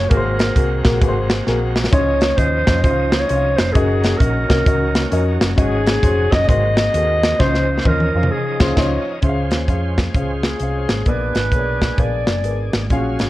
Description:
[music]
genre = uptempo gospel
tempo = 132 BPM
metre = 4/4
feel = swing 64% on 8ths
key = Db major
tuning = A4 = 440 Hz
[part]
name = warm clarinet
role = melody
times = 0.0-12.7 s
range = Ab4 to Eb5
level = -20 LUFS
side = equal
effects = none
[part]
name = dark grand piano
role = accompaniment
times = 0.0-13.3 s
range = Ab2 to C6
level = -23 LUFS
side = left 2 dB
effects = none
[part]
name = bright tonewheel organ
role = sustained chords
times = 0.0-13.3 s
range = F3 to F5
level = -28 LUFS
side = right 2 dB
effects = fast rotary speaker, overdrive
[part]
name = hollow-body short-scale fingered electric bass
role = bass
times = 0.0-13.3 s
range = F1 to F2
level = -21 LUFS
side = equal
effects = none
[part]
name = crisp fusion drum kit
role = drums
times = 0.1-13.3 s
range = crash cymbal, hi-hat, kick drum, snare drum, toms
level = -18 LUFS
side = equal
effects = none
[sound]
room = light reverb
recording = worn, warbling old tape, cassette tape, warbly pitch drift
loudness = -15 LUFS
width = side -16 dB against mid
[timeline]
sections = 0.0-9.2 A section; 9.2-13.3 B section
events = drum fill 1.5-1.9, 7.4-9.2; band accent 8.3-9.2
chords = 0.1 Ab9; 1.9 Dbmaj9; 3.8 Gb6; 5.6 Ab7sus4; 6.5 Ab9; 7.4 Dbmaj9; 9.2 Dbmaj7; 11.1 Bb7b9

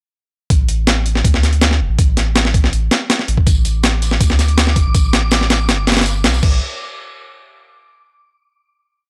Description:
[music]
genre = drum and bass, jungle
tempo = 162 BPM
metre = 4/4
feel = straight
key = unclear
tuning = A4 = 440 Hz
[part]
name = soft dub sub bass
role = bass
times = 0.5-6.6 s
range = E1 to D2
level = -19 LUFS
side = equal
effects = none
[part]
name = breakbeat sampler-style drum kit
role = drums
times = 0.5-6.5 s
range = crash cymbal, hi-hat, kick drum, snare drum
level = -17 LUFS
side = equal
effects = none
[part]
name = crunchy breakbeat drum kit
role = drums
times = 3.5-6.4 s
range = hi-hat, snare drum, tambourine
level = -30 LUFS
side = equal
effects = none
[part]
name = wind-like tuned noise texture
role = texture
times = 3.9-6.4 s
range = D6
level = -32 LUFS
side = equal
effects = built-in reverb
[sound]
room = studio reverb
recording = dry, gritty hardware recording, cassette tape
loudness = -15 LUFS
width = mono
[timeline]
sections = 0.5-6.4 drop; 6.4-7.9 final note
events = drop 0.5-6.4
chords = 0.5 A5; 3.5 Gsus2; 6.4 N.C.

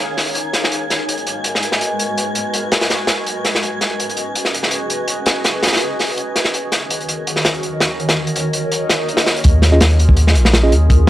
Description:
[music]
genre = drum and bass, jungle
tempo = 165 BPM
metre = 4/4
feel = swing 53% on 16ths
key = G# dorian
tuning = A4 = 440 Hz
[part]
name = granular cloud pad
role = sustained chords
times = 0.0-11.1 s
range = D#3 to E#5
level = -22 LUFS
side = equal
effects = built-in reverb, vintage 12-bit sampler grit
[part]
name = wind-like tuned noise texture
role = texture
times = 0.0-9.5 s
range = G#5 to G#6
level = -28 LUFS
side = right 1 dB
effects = built-in reverb
[part]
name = crunchy breakbeat drum kit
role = drums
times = 0.2-11.1 s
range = hi-hat, kick drum, snare drum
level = -16 LUFS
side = equal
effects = high-pass filter on kick, high-pass filter on hats, high-pass filter on snare, high-pass filter on room
[part]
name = swell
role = sound effects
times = 8.8-9.4 s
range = none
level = -28 LUFS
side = right 1 dB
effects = none
[part]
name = soft dub sub bass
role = bass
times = 9.4-11.1 s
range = A#1 to D#2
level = -12 LUFS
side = equal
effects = tube saturation
[part]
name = mellow tine electric piano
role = stabs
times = 9.7-10.7 s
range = C#4 to D#5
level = -18 LUFS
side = right 2 dB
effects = auto-pan, dub echo
[sound]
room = small room ambience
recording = dry, gritty hardware recording, vinyl crackle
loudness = -14 LUFS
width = side -14 dB against mid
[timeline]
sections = 0.0-9.4 A section; 9.4-11.1 B section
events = swell 8.8-9.4; drop 9.4-11.1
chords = 0.0 D#9sus4; 0.7 G#m7; 3.6 C#7sus4; 6.5 F#69/D#; 9.4 D#9sus4

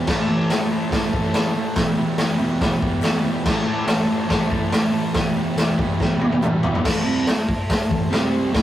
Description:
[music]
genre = garage rock duo or trio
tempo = 142 BPM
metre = 4/4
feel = straight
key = A minor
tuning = A4 = 440 Hz
[part]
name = combo organ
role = sustained chords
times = 0.0-8.6 s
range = C4 to C5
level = -31 LUFS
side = equal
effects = none
[part]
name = fuzz guitar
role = riff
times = 0.0-8.6 s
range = E2 to C4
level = -22 LUFS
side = right 1 dB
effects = distortion
[part]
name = raw garage drum kit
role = drums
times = 0.1-8.6 s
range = crash cymbal, hi-hat, kick drum, snare drum, toms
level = -20 LUFS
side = equal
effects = none
[part]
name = group handclap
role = percussion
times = 0.5-6.5 s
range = none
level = -39 LUFS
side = left 3 dB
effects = none
[sound]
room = light reverb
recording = rough rehearsal-room recording, warm saturation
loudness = -18 LUFS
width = side -12 dB against mid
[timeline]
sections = 0.0-6.9 A section; 6.9-8.6 B section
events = drum fill 6.0-6.9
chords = 0.1 Am; 1.8 Em; 3.5 Am; 5.2 Em; 6.9 Am; 8.1 C5

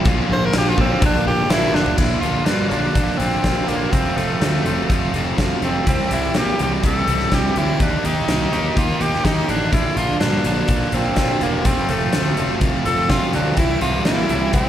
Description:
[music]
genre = classic rock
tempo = 124 BPM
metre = 4/4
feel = straight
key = unclear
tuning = A4 = 445 Hz
[part]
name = picked acoustic archtop guitar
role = accompaniment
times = 0.0-2.0, 9.7-14.7 s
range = F2 to F4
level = -30 LUFS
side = left 3 dB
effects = none
[part]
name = distorted electric guitar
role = riff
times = 0.0-14.7 s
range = F2 to G4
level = -26 LUFS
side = left 11 dB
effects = overdrive
[part]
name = overdriven semi-hollow guitar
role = riff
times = 0.0-14.7 s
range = F2 to G4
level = -24 LUFS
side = right 8 dB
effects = slapback echo
[part]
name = fuzz picked electric bass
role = bass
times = 0.1-14.7 s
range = E1 to Bb2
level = -23 LUFS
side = equal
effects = overdrive
[part]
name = huge arena drum kit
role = drums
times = 0.1-14.6 s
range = crash cymbal, hi-hat, kick drum, snare drum, toms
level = -22 LUFS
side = left 1 dB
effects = none
[part]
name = raspy tenor saxophone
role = melody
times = 0.3-14.7 s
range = A3 to C5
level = -22 LUFS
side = equal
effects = plate reverb, slapback echo
[sound]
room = light reverb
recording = live gig heard through the venue's PA, recital hall reverb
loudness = -16 LUFS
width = side -11 dB against mid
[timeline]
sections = 0.0-2.0 A section; 2.0-14.7 B section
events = tenor saxophone solo 0.0-2.0; drum fill 1.7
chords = 0.1 Bb; 3.9 F; 5.9 C; 7.8 Eb; 9.7 Bb6; 11.6 F; 13.6 C

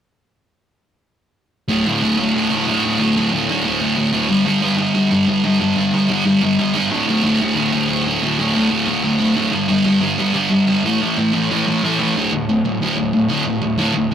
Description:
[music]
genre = punk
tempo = 184 BPM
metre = 4/4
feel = straight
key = unclear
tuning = A4 = 440 Hz
[part]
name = sludgy distorted guitar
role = solo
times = 1.7-14.1 s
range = D2 to A3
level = -15 LUFS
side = equal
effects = overdrive
[sound]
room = moderate stone room reverb, RT60 0.9 s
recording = rough rehearsal-room recording, warm saturation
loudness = -15 LUFS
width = side -9 dB against mid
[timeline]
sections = 1.7-12.1 A section; 12.1-14.1 B section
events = none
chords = 1.7 D5; 4.3 G5; 6.9 D5; 9.5 G5; 10.8 A5; 12.1 D5

